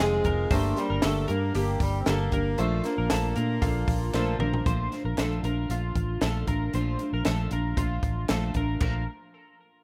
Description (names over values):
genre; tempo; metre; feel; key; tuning
jangly indie pop; 116 BPM; 4/4; straight; Bb major; A4 = 440 Hz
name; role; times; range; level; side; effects
melodica; melody; 0.0-4.4 s; G3 to C4; -34 LUFS; equal; none
fingerpicked steel-string acoustic guitar; accompaniment; 0.0-9.0 s; F2 to G4; -34 LUFS; equal; none
warm upright piano; accompaniment; 0.0-4.7 s; Bb3 to C5; -37 LUFS; equal; none
twelve-string electric guitar; arpeggios; 0.0-9.1 s; F4 to C5; -37 LUFS; equal; analog chorus, tape echo
vintage muted fingered electric bass; bass; 0.0-9.1 s; F1 to Bb2; -31 LUFS; equal; none
group handclap; percussion; 0.0-9.1 s; none; -42 LUFS; equal; none
compact cocktail drum kit; drums; 0.2-8.9 s; crash cymbal, hi-hat, kick drum, snare drum, toms; -32 LUFS; equal; none
room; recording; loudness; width
studio ambience; rough home demo mix; -27 LUFS; mono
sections
0.0-4.7 A section; 4.7-8.8 B section; 8.8-9.8 C section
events
drum fill 4.1-4.7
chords
0.0 Fm7; 0.5 Gm; 2.6 Bbmaj7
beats
| 0.51 1.03 1.55 2.06 | 2.58 3.10 3.62 4.14 | 4.66 5.18 5.70 6.21 | 6.73 7.25 7.77 8.29 | 8.81